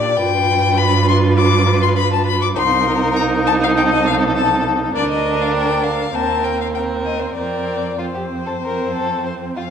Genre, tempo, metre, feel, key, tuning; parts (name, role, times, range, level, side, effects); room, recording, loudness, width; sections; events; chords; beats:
quick classical-period movement for string quartet; 100 BPM; 4/4; uneven beats; A4 = 440 Hz
rich violin; melody; 0.0-9.7 s; C5 to D6; -20 LUFS; left 8 dB
rich violin; second line; 0.0-9.6 s; F4 to C5; -23 LUFS; left 2 dB
rich viola; accompaniment; 0.0-9.6 s; C4 to F4; -21 LUFS; right 2 dB
warm cello; bass; 0.0-9.6 s; C2 to Bb2; -20 LUFS; right 4 dB
wet recital hall reverb, RT60 1.4 s; minimal, uncompressed stereo recording; -15 LUFS; side -8 dB against mid
0.0-9.7 A section
0.2 G7; 2.6 Cm7; 5.0 Bb/D; 6.1 Cm7/Eb; 7.4 Fsus4
| 0.18 0.78 1.38 1.98 | 2.57 3.16 3.76 4.35 | 4.95 5.55 6.15 6.75 | 7.37 8.00 8.62 9.25